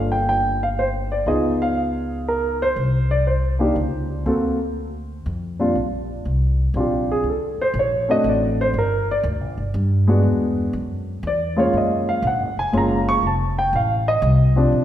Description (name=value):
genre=jazz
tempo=120 BPM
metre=3/4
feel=swing 67% on 8ths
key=G minor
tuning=A4 = 440 Hz
part: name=dark grand piano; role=melody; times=0.0-14.8 s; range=Bb2 to Db6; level=-20 LUFS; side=equal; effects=none
part: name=upright bass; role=bass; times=0.0-14.8 s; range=F1 to G2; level=-22 LUFS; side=equal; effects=none
room=wet scoring stage reverb, RT60 1.8 s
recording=recorded in a church or concert hall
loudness=-18 LUFS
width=side -11 dB against mid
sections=0.0-5.8 A section; 5.8-14.8 B section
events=grand piano solo 5.8-14.8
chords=0.0 Gm7; 1.3 C#9; 2.8 N.C.; 4.3 D7b13; 5.3 F5; 5.8 Bb6; 7.3 D7; 8.7 Gm; 10.2 E9; 11.7 Gbmaj7; 13.2 F7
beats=0.28 0.78 | 1.27 1.77 2.27 | 2.77 3.27 3.77 | 4.26 4.76 5.26 | 5.76 6.26 6.76 | 7.25 7.75 8.25 | 8.75 9.25 9.74 | 10.24 10.74 11.24 | 11.74 12.23 12.73 | 13.23 13.73 14.23 | 14.72